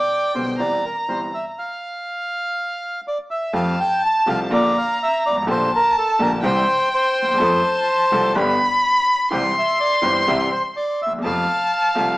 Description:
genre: tango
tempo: 124 BPM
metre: 4/4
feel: rubato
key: F major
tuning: A4 = 441 Hz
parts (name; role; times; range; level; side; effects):
- bandoneon; melody; 0.0-12.2 s; A4 to A5; -20 LUFS; equal; none
- rich violin; second line; 0.0-12.2 s; G5 to C6; -21 LUFS; left 1 dB; none
- bright upright piano; accompaniment; 0.3-12.2 s; G1 to A4; -23 LUFS; equal; none
- upright bass; bass; 0.4-12.2 s; G1 to F2; -30 LUFS; equal; none
room: wet studio reverb, RT60 0.8 s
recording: band playing live in one room, small speaker sound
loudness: -17 LUFS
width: side -19 dB against mid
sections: 0.0-3.5 A section; 3.5-12.2 B section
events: stop 1.6-3.5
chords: 0.0 G; 0.6 C; 1.6 N.C.; 3.5 Fadd9; 4.5 Bb; 5.5 Gmadd9/Bb; 6.4 C; 7.4 F; 8.3 G; 9.3 C; 11.2 F

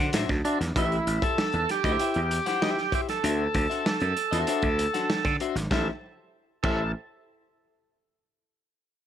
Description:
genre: funk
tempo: 97 BPM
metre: 4/4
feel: straight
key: A dorian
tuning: A4 = 440 Hz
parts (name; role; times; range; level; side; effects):
- clean electric guitar; accompaniment; 0.0-6.8 s; D4 to F#5; -31 LUFS; left 7 dB; wide subtle chorus
- gritty slap bass; bass; 0.0-6.9 s; G#1 to D3; -28 LUFS; equal; overdrive
- crunchy breakbeat drum kit; drums; 0.1-6.8 s; crash cymbal, hi-hat, kick drum, snare drum; -29 LUFS; right 1 dB; none
- overdriven tonewheel organ; melody; 0.4-6.9 s; D4 to A4; -28 LUFS; right 2 dB; slow rotary speaker
room: light reverb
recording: none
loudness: -24 LUFS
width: side -10 dB against mid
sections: 0.8-5.7 A section; 5.7-8.2 B section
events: none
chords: 0.0 D9; 0.8 Am7; 3.2 D9; 5.7 Am7

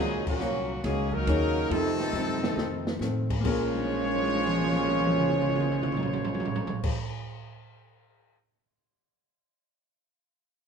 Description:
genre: jazz, big band swing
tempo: 138 BPM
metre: 4/4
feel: swing 67% on 8ths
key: Bb minor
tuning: A4 = 440 Hz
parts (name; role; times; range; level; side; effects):
- clear trumpet section; melody; 0.0-6.9 s; Gb3 to Db5; -32 LUFS; equal; none
- clear trombone section; second line; 0.0-6.9 s; Bb2 to Db4; -30 LUFS; right 2 dB; none
- hollow-body jazz guitar; accompaniment; 0.0-7.0 s; F2 to Ab4; -35 LUFS; left 4 dB; none
- upright bass; bass; 0.0-6.8 s; Bb1 to A2; -34 LUFS; equal; none
- open jazz drum kit; drums; 0.3-8.4 s; crash cymbal, hi-hat, kick drum, ride cymbal, snare drum, toms; -31 LUFS; right 1 dB; none
- warm concert grand piano; accompaniment; 1.3-6.9 s; Bb2 to Db5; -33 LUFS; left 1 dB; none
room: moderate large studio reverb, RT60 1.1 s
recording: band playing live in one room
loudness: -25 LUFS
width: side -6 dB against mid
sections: 0.0-3.4 A section; 3.4-6.9 B section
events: band accent 0.2; drum fill 2.1-3.0, 3.7-6.8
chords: 0.0 Ebm7; 1.7 F7; 3.4 Bbm9

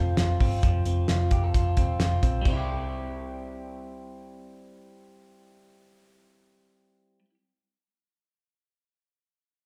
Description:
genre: jangly indie pop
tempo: 132 BPM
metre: 4/4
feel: straight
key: C major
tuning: A4 = 441 Hz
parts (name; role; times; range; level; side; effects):
- electric guitar through a small old amp; arpeggios; 0.0-7.3 s; F3 to A4; -35 LUFS; equal; none
- vintage muted picked electric bass; bass; 0.0-7.2 s; E1 to C2; -29 LUFS; equal; none
- cloth-damped thuddy drum kit; drums; 0.2-2.6 s; crash cymbal, hi-hat, kick drum, snare drum; -28 LUFS; equal; none
room: moderate large studio reverb, RT60 1.4 s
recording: band playing live in one room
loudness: -25 LUFS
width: mono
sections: 0.0-2.5 A section; 2.5-6.1 B section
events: none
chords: 0.0 F; 2.5 C

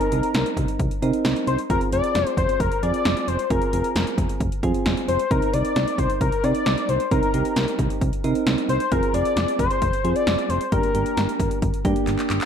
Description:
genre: synth-pop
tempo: 133 BPM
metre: 4/4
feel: straight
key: C minor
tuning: A4 = 440 Hz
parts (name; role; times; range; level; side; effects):
- wide unison lead; melody; 0.0-11.6 s; Bb4 to D5; -24 LUFS; left 4 dB; ping-pong delay
- soft electric-piano-like synth keys; accompaniment; 0.0-12.4 s; Bb3 to Bb4; -26 LUFS; right 4 dB; chorus
- house drum kit; drums; 0.0-12.5 s; handclaps, hi-hat, kick drum, snare drum; -25 LUFS; equal; gated reverb
- solid FM bass; bass; 0.1-12.4 s; F1 to C3; -25 LUFS; equal; none
room: moderate plate reverb, RT60 1.5 s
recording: bright 1980s-style digital production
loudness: -19 LUFS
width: side -8 dB against mid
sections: 0.0-12.5 A section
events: drum fill 12.1-12.5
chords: 0.0 Cm7; 1.7 Fm; 5.3 Cm7; 8.9 Fm; 10.7 Gm

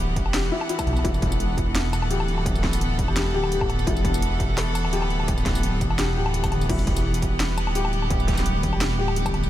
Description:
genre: half-time drum and bass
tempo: 170 BPM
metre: 4/4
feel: swing 53% on 16ths, half-time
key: E minor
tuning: A4 = 440 Hz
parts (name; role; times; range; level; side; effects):
- rich chamber string section; sustained chords; 0.0-9.5 s; E3 to F#5; -29 LUFS; equal; sidechain pumping
- felt-muted upright piano; arpeggios; 0.0-9.5 s; E4 to G4; -31 LUFS; left 5 dB; analog delay
- dark detuned saw bass; bass; 0.0-9.5 s; D1 to B1; -24 LUFS; equal; none
- drum and bass drum kit; drums; 0.2-9.5 s; crash cymbal, hi-hat, snare drum, tambourine, woodblock; -30 LUFS; equal; overdrive
- electronic kick drum; drums; 0.2-9.3 s; none; -26 LUFS; equal; distortion
- vibraphone with medium hard mallets; melody; 3.1-3.6, 8.7-9.0 s; G4; -35 LUFS; left 3 dB; none
- metallic inharmonic drone; texture; 7.5-9.5 s; G3 to G4; -34 LUFS; equal; chorus, built-in reverb
room: light reverb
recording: none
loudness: -21 LUFS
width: side -13 dB against mid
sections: 0.0-9.5 A section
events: none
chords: 0.0 Em

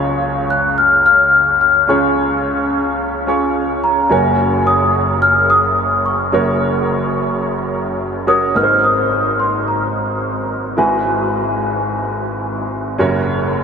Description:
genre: pop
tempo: 108 BPM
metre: 4/4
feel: swing 55% on 16ths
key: Db major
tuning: A4 = 443 Hz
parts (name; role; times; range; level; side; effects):
- celesta; melody; 0.0-12.7 s; Ab5 to Gb6; -15 LUFS; left 2 dB; lush chorus, ping-pong delay
- clear grand piano; accompaniment; 0.0-13.6 s; Gb1 to Db5; -17 LUFS; right 1 dB; lush chorus
room: wet huge ambient reverb, RT60 8.6 s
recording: dreamy mix soaked in reverb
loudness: -13 LUFS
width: side -6 dB against mid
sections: 0.0-8.6 A section; 8.6-13.6 B section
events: none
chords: 0.0 Db; 4.1 Gb; 8.6 Abadd9; 10.8 Eadd9/G#; 13.0 Gb

